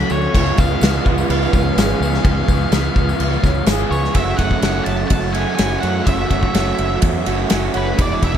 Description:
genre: rock, shoegaze and dream pop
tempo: 126 BPM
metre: 4/4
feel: straight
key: F# minor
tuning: A4 = 438 Hz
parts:
  - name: octave-fuzz lead guitar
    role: melody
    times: 0.0-8.4 s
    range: B4 to B5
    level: -26 LUFS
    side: left 1 dB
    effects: distortion, digital delay
  - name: string machine, full ensemble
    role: sustained chords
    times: 0.0-4.1 s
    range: A4 to E6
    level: -29 LUFS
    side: left 1 dB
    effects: ensemble chorus
  - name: electric guitar through a small old amp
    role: arpeggios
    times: 0.0-8.4 s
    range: E3 to A4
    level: -28 LUFS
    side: right 4 dB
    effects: wide subtle chorus, digital delay
  - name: overdriven semi-hollow guitar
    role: riff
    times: 0.0-8.4 s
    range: E2 to F#4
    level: -22 LUFS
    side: right 11 dB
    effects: reverse reverb
  - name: raw garage guitar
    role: riff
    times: 0.0-8.4 s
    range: C#3 to G#4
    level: -24 LUFS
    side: left 13 dB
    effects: overdrive, wide subtle chorus
  - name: growling fingered electric bass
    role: bass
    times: 0.0-8.4 s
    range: E1 to F#2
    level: -21 LUFS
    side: equal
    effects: overdrive
  - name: tambourine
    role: percussion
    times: 0.1-4.1 s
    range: none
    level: -37 LUFS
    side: left 8 dB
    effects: none
  - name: loose indie drum kit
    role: drums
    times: 0.3-8.4 s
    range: crash cymbal, kick drum, ride cymbal, snare drum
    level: -19 LUFS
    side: equal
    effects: none
room: light reverb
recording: none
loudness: -14 LUFS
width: side -9 dB against mid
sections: 0.0-4.2 A section; 4.2-8.4 B section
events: none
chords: 0.3 C#7; 4.2 F#m7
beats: | 0.35 0.82 1.30 1.77 | 2.25 2.73 3.20 3.68 | 4.16 4.64 5.12 5.59 | 6.07 6.55 7.03 7.51 | 7.99

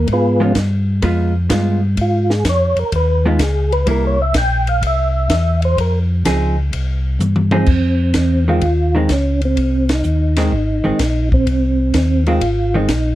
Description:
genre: soul jazz organ trio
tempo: 126 BPM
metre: 4/4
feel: swing 68% on 8ths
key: F minor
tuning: A4 = 440 Hz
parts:
  - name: percussive tonewheel organ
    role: melody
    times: 0.0-13.2 s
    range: F3 to G5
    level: -18 LUFS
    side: right 1 dB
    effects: slow rotary speaker, chorus vibrato, plate reverb
  - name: mellow tonewheel organ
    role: bass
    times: 0.0-13.2 s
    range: Ab1 to Ab2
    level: -16 LUFS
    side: equal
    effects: slow rotary speaker
  - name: compact cocktail drum kit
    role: drums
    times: 0.1-13.0 s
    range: crash cymbal, hi-hat, kick drum, ride cymbal, snare drum, toms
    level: -20 LUFS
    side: equal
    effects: none
  - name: vintage hollow-body jazz guitar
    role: accompaniment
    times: 0.4-12.9 s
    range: Eb3 to Ab4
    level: -18 LUFS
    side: right 1 dB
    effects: none
room: light reverb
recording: dark, warm production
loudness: -14 LUFS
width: side -14 dB against mid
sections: 0.0-7.7 A section; 7.7-13.2 B section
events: tonewheel organ solo 0.0-7.7; drum fill 7.2-7.7; band accent 9.8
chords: 0.1 Db7; 3.9 C7; 5.8 Fm7; 6.7 C5; 7.7 Fm7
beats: | 0.08 0.56 1.03 1.51 | 1.98 2.46 2.93 3.41 | 3.88 4.36 4.83 5.31 | 5.78 6.25 6.73 7.20 | 7.68 8.15 8.63 9.10 | 9.58 10.05 10.52 11.00 | 11.47 11.95 12.42 12.89

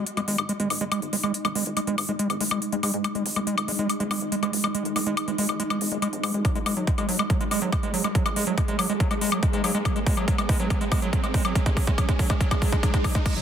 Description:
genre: psychedelic trance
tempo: 141 BPM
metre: 4/4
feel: straight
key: unclear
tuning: A4 = 437 Hz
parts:
  - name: swarming drone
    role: sustained chords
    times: 0.0-13.4 s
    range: G#3 to G#4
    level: -31 LUFS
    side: right 3 dB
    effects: built-in reverb, sidechain pumping
  - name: overdriven acid bass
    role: riff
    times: 0.0-13.4 s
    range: F#3 to G#3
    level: -28 LUFS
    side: moving between left 7 dB and right 6 dB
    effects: auto-pan, sidechain pumping, ping-pong delay
  - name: plucky analog bass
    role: bass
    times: 0.0-13.4 s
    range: F#1 to G#2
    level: -38 LUFS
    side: right 1 dB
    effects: high-pass filter
  - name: riser and swell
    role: sound effects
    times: 1.4-13.3 s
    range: none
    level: -37 LUFS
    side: right 2 dB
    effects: none
  - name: big-room dance drum kit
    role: drums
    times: 0.1-13.4 s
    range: crash cymbal, hi-hat, woodblock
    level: -28 LUFS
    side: left 3 dB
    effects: overdrive
  - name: electronic kick drum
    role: drums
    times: 6.4-13.3 s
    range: none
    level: -23 LUFS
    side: equal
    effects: overdrive
room: light reverb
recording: dense, heavily limited modern master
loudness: -22 LUFS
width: side -9 dB against mid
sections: 0.0-13.3 A section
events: build-up 0.0-13.3; filter sweep on acid bass 0.0-13.3; filter sweep on synth drone 0.0-13.3; riser 1.4-13.3; drum fill 6.4-13.3; swell 12.4-13.3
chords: 0.0 G#5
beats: 0.07 0.49 0.92 | 1.34 1.77 2.19 2.62 | 3.04 3.47 3.90 4.32 | 4.75 5.17 5.60 6.02 | 6.45 6.87 7.30 7.72 | 8.15 8.58 9.00 9.43 | 9.85 10.28 10.70 11.13 | 11.55 11.98 12.41 12.83 | 13.26

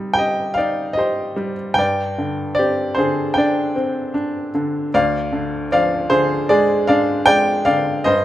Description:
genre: classical, lyrical solo piano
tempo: 77 BPM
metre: 4/4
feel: rubato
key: unclear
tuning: A4 = 440 Hz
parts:
  - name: clear upright piano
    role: solo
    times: 0.0-8.2 s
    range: D2 to G5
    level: -16 LUFS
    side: equal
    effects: none
room: light reverb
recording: close, detailed microphones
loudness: -16 LUFS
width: side -13 dB against mid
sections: 0.0-8.2 A section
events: none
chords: 0.0 Cm; 1.8 Gsus4; 4.9 Ddim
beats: 0.18 0.98 | 1.78 2.59 3.37 4.15 | 4.93 5.71 6.50 7.28 | 8.06

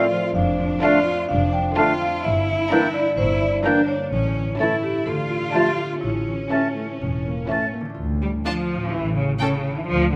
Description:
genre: cinematic, playful, whimsical film cue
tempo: 127 BPM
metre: 4/4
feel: straight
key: D minor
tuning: A4 = 440 Hz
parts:
  - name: marimba with medium hard mallets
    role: melody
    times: 0.0-7.7 s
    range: E4 to A5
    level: -27 LUFS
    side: equal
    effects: none
  - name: rich studio violin section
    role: melody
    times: 0.0-9.5 s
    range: G5 to Bb5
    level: -36 LUFS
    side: equal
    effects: none
  - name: clear oboe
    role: second line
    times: 0.0-7.7 s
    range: F5 to A5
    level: -29 LUFS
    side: equal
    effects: none
  - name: rich studio violin section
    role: second line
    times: 0.0-9.5 s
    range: C#4 to A4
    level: -34 LUFS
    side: equal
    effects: none
  - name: warm clarinet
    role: second line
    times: 0.0-7.7 s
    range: C#4 to F4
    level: -29 LUFS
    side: equal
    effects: none
  - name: mellow bassoon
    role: accompaniment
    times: 0.0-7.6 s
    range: A3 to Bb3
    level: -30 LUFS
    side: equal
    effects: none
  - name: rich studio viola section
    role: accompaniment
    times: 0.0-9.5 s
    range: D3 to D4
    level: -31 LUFS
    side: equal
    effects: none
  - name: dark French horn section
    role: sustained chords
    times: 0.0-7.8 s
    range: A3 to F4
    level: -34 LUFS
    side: equal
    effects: none
  - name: concert harp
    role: arpeggios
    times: 0.0-10.2 s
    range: F2 to G4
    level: -32 LUFS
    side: equal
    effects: none
  - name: rich studio cello section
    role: bass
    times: 0.0-10.2 s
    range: C#3 to F4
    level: -28 LUFS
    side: equal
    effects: none
  - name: rich studio double bass section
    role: bass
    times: 0.4-10.2 s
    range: E1 to D2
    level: -28 LUFS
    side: equal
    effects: none
room: moderate scoring stage reverb, RT60 1.5 s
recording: close, detailed microphones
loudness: -22 LUFS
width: mono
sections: 0.0-8.0 A section; 8.0-10.2 B section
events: none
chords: 0.4 Dm/F; 2.2 Em7b5/G; 4.1 A; 5.1 Dm; 6.0 A; 8.0 Dm; 8.9 A7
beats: | 0.36 0.83 1.30 1.77 | 2.24 2.71 3.18 3.65 | 4.12 4.60 5.07 5.54 | 6.03 6.52 7.01 7.49 | 7.98 8.45 8.92 9.40 | 9.87

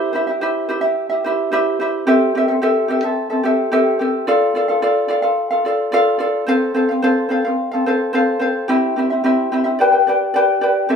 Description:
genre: pop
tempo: 109 BPM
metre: 4/4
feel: straight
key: unclear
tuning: A4 = 438 Hz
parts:
  - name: ukulele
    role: solo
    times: 0.0-11.0 s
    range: C4 to G5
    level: -15 LUFS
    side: equal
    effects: none
room: moderate stone room reverb, RT60 1.2 s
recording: band playing live in one room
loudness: -15 LUFS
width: side -6 dB against mid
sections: 0.0-10.9 A section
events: none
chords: 0.0 C; 2.1 Am7; 4.3 Dm; 6.5 F; 8.7 C; 9.8 G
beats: 0.42 0.97 1.52 | 2.07 2.62 3.17 3.72 | 4.27 4.82 5.37 5.92 | 6.47 7.02 7.57 8.13 | 8.68 9.23 9.78 10.33 | 10.89

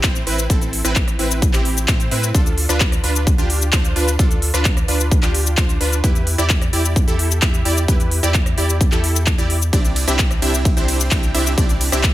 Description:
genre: EDM, festival progressive house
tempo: 130 BPM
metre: 4/4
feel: straight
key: A minor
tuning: A4 = 440 Hz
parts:
  - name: supersaw stab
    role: riff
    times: 0.0-12.1 s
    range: C4 to G5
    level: -22 LUFS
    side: right 1 dB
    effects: sidechain pumping, dub echo
  - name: saturated sub bass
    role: bass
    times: 0.0-12.1 s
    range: A1 to A2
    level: -21 LUFS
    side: equal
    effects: sidechain pumping
  - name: big-room dance drum kit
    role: drums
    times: 0.0-12.1 s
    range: cabasa, handclaps, hi-hat, ride cymbal, rim click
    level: -21 LUFS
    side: left 2 dB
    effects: none
  - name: electronic kick drum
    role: drums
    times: 0.0-12.1 s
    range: none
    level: -17 LUFS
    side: equal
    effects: none
room: little or no reverb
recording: none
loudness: -15 LUFS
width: side -15 dB against mid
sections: 0.0-12.1 A section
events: none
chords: 0.0 Am; 2.3 Dm; 6.0 Em; 9.7 Cadd9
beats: 0.04 | 0.50 0.96 1.42 1.88 | 2.35 2.81 3.27 3.73 | 4.19 4.65 5.11 5.58 | 6.04 6.50 6.96 7.42 | 7.88 8.35 8.81 9.27 | 9.73 10.19 10.65 11.11 | 11.58 12.04

